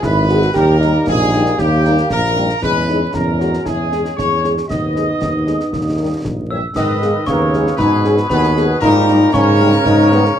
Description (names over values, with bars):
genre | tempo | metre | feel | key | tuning
military-style march for wind band | 116 BPM | 2/4 | straight | G# minor | A4 = 439 Hz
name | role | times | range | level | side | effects
warm trumpet section | melody | 0.0-10.4 s | G4 to E5 | -21 LUFS | left 1 dB | none
large flute ensemble | second line | 0.0-10.4 s | G4 to D#6 | -23 LUFS | equal | none
warm euphonium | second line | 0.0-10.4 s | A#2 to G#4 | -20 LUFS | right 2 dB | none
dark trombone section | sustained chords | 0.0-10.4 s | E3 to D#4 | -21 LUFS | left 1 dB | none
warm tuba | bass | 0.0-10.3 s | G#1 to G#2 | -17 LUFS | equal | none
concert snare drum, concert bass drum and clash cymbals | drums | 0.0-10.4 s | none | -26 LUFS | left 1 dB | none
dark French horn section | accompaniment | 0.3-10.2 s | G3 to A#4 | -20 LUFS | left 2 dB | none
glockenspiel with rubber mallets | second line | 6.5-10.4 s | A#5 to E6 | -22 LUFS | left 2 dB | none
room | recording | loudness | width
moderate booth ambience, RT60 0.2 s | vinyl crackle | -12 LUFS | side -9 dB against mid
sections
0.0-6.8 A section; 6.8-10.4 B section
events
none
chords
0.0 C#m (rootless); 0.6 D#; 2.6 C#m/E; 4.7 G#m/D#; 5.7 D#; 6.8 G#m; 8.8 D#7/G#